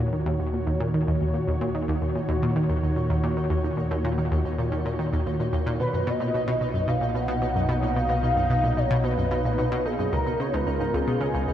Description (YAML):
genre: ambient, sequencer-driven space music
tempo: 111 BPM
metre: 4/4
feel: straight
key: Eb minor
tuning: A4 = 442 Hz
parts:
  - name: sweeping resonant pad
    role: sustained chords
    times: 0.0-11.5 s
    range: Bb2 to Db5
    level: -29 LUFS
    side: equal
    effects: chorus
  - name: analog pluck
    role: riff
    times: 0.0-11.5 s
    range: Db2 to Eb3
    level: -26 LUFS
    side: equal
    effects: chorus, analog delay
  - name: analog drone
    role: bass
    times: 0.0-11.5 s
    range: B1 to Eb2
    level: -32 LUFS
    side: equal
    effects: chorus
  - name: pulsing gated texture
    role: texture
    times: 0.0-11.5 s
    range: Eb4 to Eb5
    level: -40 LUFS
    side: right 1 dB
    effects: chorus, built-in reverb
  - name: expressive synth lead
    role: melody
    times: 5.8-11.5 s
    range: Ab4 to F#5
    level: -27 LUFS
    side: equal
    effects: ensemble chorus, cassette tape, analog delay
room: moderate huge ambient reverb, RT60 8.1 s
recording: none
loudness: -22 LUFS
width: side -10 dB against mid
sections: 0.0-11.5 A section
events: fade-in on synth texture 0.0-11.5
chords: 0.0 Ebm7; 5.8 Bmaj9; 10.1 Db9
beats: 0.40 0.94 | 1.48 2.02 2.56 3.10 | 3.64 4.18 4.72 5.26 | 5.80 6.34 6.88 7.42 | 7.96 8.50 9.04 9.59 | 10.12 10.67 11.21